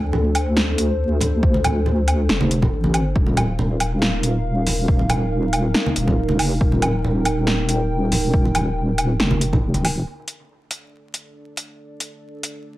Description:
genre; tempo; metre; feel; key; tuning
deep dubstep; 139 BPM; 4/4; half-time; D phrygian; A4 = 440 Hz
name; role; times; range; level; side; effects
dark analog pad; sustained chords; 0.0-12.8 s; D4 to G5; -26 LUFS; equal; chorus
deep soft wobble bass; bass; 0.0-10.0 s; Eb1 to D2; -20 LUFS; equal; chorus
congas; percussion; 0.1-9.8 s; none; -25 LUFS; right 1 dB; none
deep house drum kit; drums; 0.3-12.5 s; hi-hat, snare drum, woodblock; -23 LUFS; equal; overdrive
electronic kick drum; drums; 1.4-9.6 s; none; -19 LUFS; equal; overdrive
room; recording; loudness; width
digital ambience; vinyl crackle; -17 LUFS; side -16 dB against mid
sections
0.0-10.1 A section; 10.1-12.8 B section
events
none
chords
0.0 Dm; 3.2 Eb; 10.1 D5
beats
0.14 0.57 1.00 | 1.43 1.86 2.29 2.72 | 3.16 3.59 4.02 4.45 | 4.88 5.31 5.75 6.18 | 6.61 7.04 7.47 7.90 | 8.34 8.77 9.20 9.63 | 10.06 10.49 10.93 11.36 | 11.79 12.22 12.65

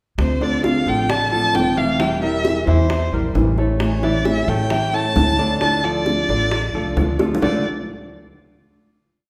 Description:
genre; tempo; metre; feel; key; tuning
latin, Cuban son and guajira; 133 BPM; 4/4; straight; D minor; A4 = 435 Hz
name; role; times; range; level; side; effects
warm violin; melody; 0.2-7.6 s; C5 to A5; -25 LUFS; equal; none
nylon-string guitar; accompaniment; 0.2-7.6 s; D3 to F4; -25 LUFS; equal; none
upright bass; bass; 0.2-7.6 s; E1 to A2; -25 LUFS; equal; none
bongos; percussion; 0.2-7.5 s; none; -27 LUFS; equal; none
clear grand piano; arpeggios; 0.4-7.6 s; D3 to E5; -27 LUFS; equal; none
room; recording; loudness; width
wet recital hall reverb, RT60 1.6 s; recorded in a church or concert hall; -19 LUFS; mono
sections
0.2-7.4 A section; 7.4-9.2 final chord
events
drum fill 7.2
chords
0.2 Dm7; 2.0 Edim; 3.8 A; 5.6 Dm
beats
| 0.19 0.64 1.09 1.55 | 2.00 2.45 2.90 3.35 | 3.81 4.26 4.71 5.16 | 5.61 6.06 6.51 6.97 | 7.42

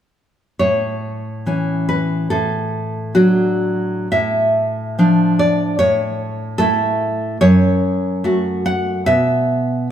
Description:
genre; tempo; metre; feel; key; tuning
romantic piece for solo classical guitar; 60-76 BPM; 2/4; rubato; A major; A4 = 440 Hz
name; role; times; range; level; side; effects
nylon-string guitar; solo; 0.6-9.9 s; F#2 to F#5; -15 LUFS; equal; none
room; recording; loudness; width
moderate recital hall reverb, RT60 1.7 s; none; -15 LUFS; side -10 dB against mid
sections
0.6-9.9 A section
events
none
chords
0.6 A; 2.3 D/A; 4.1 Dm/A; 5.8 A; 7.4 F#m; 9.1 N.C.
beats
| 0.60 1.46 | 2.31 3.15 | 4.11 4.98 | 5.80 6.60 | 7.41 8.24 | 9.07 9.90

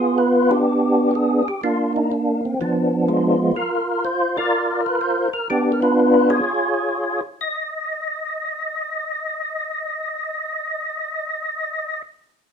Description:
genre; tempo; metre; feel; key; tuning
jazz; 124 BPM; 4/4; swing 68% on 8ths; unclear; A4 = 440 Hz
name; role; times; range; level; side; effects
percussive tonewheel organ; solo; 0.0-12.0 s; F3 to Eb5; -18 LUFS; equal; slow rotary speaker, overdrive, chorus vibrato
room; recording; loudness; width
wet studio reverb, RT60 0.7 s; minimal, uncompressed stereo recording; -18 LUFS; side -7 dB against mid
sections
0.0-3.5 A section; 3.5-7.4 B section; 7.4-11.3 C section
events
none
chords
0.0 G7b9; 1.6 Bbadd9; 2.6 Fdim7; 3.5 Bbadd9/F; 5.5 Bdim7; 6.4 Db; 7.4 N.C.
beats
0.17 0.65 1.13 | 1.61 2.09 2.58 3.06 | 3.54 4.02 4.50 4.98 | 5.46 5.95 6.43 6.91 | 7.39 7.87 8.35 8.84 | 9.32 9.80 10.29 10.77

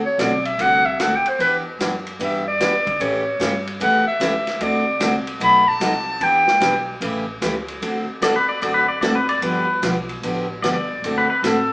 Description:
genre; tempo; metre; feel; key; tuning
country, western swing; 149 BPM; 4/4; swing 65% on 8ths; unclear; A4 = 444 Hz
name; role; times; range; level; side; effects
upright bass; bass; 0.0-11.7 s; F#1 to A2; -34 LUFS; equal; none
clear clarinet; second line; 0.1-6.9 s; B4 to B5; -17 LUFS; equal; none
picked steel-string acoustic guitar; accompaniment; 0.2-11.6 s; B2 to A4; -23 LUFS; equal; none
vintage drum kit; drums; 0.2-11.6 s; hi-hat, kick drum, ride cymbal, snare drum; -27 LUFS; equal; none
pedal steel guitar; second line; 8.2-11.7 s; A4 to D5; -20 LUFS; left 1 dB; none
room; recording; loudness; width
wet large studio reverb, RT60 0.8 s; band playing live in one room, small speaker sound; -17 LUFS; side -23 dB against mid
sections
0.0-7.8 A section; 7.8-11.7 A section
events
clarinet solo 0.0-7.8; pedal steel guitar solo 7.8-11.7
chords
0.0 D7; 1.4 Em7; 3.0 A7; 4.6 D7; 5.4 B7b9; 6.2 Em7; 7.0 A7; 7.8 D7; 9.4 G7; 11.0 D7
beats
0.19 0.59 0.99 | 1.40 1.80 2.20 2.60 | 3.00 3.40 3.80 4.21 | 4.61 5.01 5.41 5.81 | 6.21 6.62 7.02 7.42 | 7.82 8.22 8.62 9.03 | 9.43 9.83 10.23 10.63 | 11.03 11.43

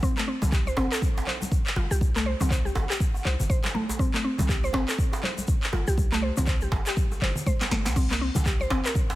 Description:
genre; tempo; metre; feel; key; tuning
afro house; 121 BPM; 4/4; swing 59% on 16ths; unclear; A4 = 439 Hz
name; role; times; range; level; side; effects
mallet-like synth pluck; arpeggios; 0.0-8.9 s; A3 to C5; -30 LUFS; equal; chorus, sidechain pumping, dub echo
electronic kick drum; drums; 0.0-9.1 s; none; -25 LUFS; equal; small room ambience
congas; percussion; 0.0-9.1 s; none; -35 LUFS; left 2 dB; none
egg shaker; percussion; 0.0-9.2 s; none; -39 LUFS; left 3 dB; none
afro-pop drum kit; drums; 0.2-8.9 s; crash cymbal, handclaps, snare drum, toms; -32 LUFS; equal; small room ambience
warm 808-style bass; bass; 0.4-8.8 s; G1 to C2; -27 LUFS; equal; sidechain pumping
djembe; percussion; 0.4-9.2 s; none; -36 LUFS; right 1 dB; none
room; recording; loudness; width
small room ambience; none; -23 LUFS; side -16 dB against mid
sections
0.0-9.2 A section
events
drum fill 7.5-8.0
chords
0.0 Fadd9 (rootless); 8.0 C5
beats
| 0.03 0.52 1.02 1.52 | 2.01 2.51 3.00 3.50 | 4.00 4.49 4.99 5.48 | 5.98 6.47 6.97 7.47 | 7.96 8.46 8.95

